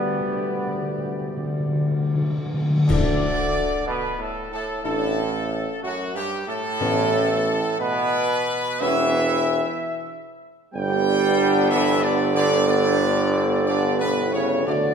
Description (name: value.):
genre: classical, ceremonial fanfare.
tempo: 61 BPM.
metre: 4/4.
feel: straight.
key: unclear.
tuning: A4 = 440 Hz.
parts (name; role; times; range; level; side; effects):
bright trumpet section; melody; 0.0-14.9 s; F#4 to G5; -26 LUFS; left 1 dB; none.
warm French horn section; sustained chords; 0.0-14.9 s; G3 to F#4; -27 LUFS; left 3 dB; none.
warm trombone section; sustained chords; 0.0-14.9 s; F#2 to B3; -26 LUFS; right 2 dB; none.
clear tuba; bass; 0.0-14.9 s; E1 to D2; -25 LUFS; right 3 dB; none.
timpani; percussion; 0.0-8.3, 14.7-14.9 s; A2 to D3; -25 LUFS; left 2 dB; none.
clash cymbals, concert bass drum and cymbal swell; percussion; 2.9-4.8, 14.7-14.9 s; none; -30 LUFS; left 2 dB; none.
room: wet scoring stage reverb, RT60 1.6 s.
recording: dark, warm production.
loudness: -20 LUFS.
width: side -6 dB against mid.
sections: 0.0-2.9 A section; 2.9-14.9 B section.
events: timpani fill 0.0-2.9, 14.7; band accent 2.9-3.9.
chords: 0.0 G/D; 2.9 Dsus2; 6.8 Aadd9; 10.7 G.